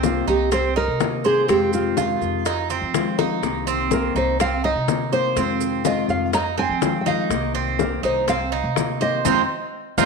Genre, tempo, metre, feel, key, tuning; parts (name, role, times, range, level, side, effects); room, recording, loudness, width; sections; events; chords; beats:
latin, Cuban son and guajira; 124 BPM; 4/4; straight; C minor; A4 = 440 Hz
flamenco guitar; accompaniment; 0.0-10.1 s; C3 to G4; -26 LUFS; left 11 dB
Cuban tres; arpeggios; 0.0-10.1 s; C4 to C5; -24 LUFS; right 9 dB
upright bass; bass; 0.0-10.1 s; C2 to F3; -29 LUFS; right 1 dB
bongos; percussion; 0.0-10.1 s; -28 LUFS; left 11 dB
congas; percussion; 0.0-10.1 s; -29 LUFS; left 11 dB
maracas; percussion; 0.0-10.1 s; -35 LUFS; right 16 dB
nylon-string guitar; melody; 0.1-10.1 s; F4 to Bb5; -23 LUFS; right 1 dB
wet echo chamber reverb, RT60 1.4 s, studio ambience; 1960s-style stereo with parts hard left and right; -19 LUFS; side -4 dB against mid
0.0-10.1 A section
drum fill 3.2; band accent 9.3-10.1
0.0 Cm7; 1.5 Fm7; 3.4 Cm7; 5.4 Fm7; 7.3 Cm7; 9.3 Fm7
0.04 0.52 1.00 | 1.49 1.97 2.46 2.94 | 3.43 3.91 4.40 4.88 | 5.37 5.85 6.34 6.82 | 7.31 7.79 8.28 8.77 | 9.25 9.74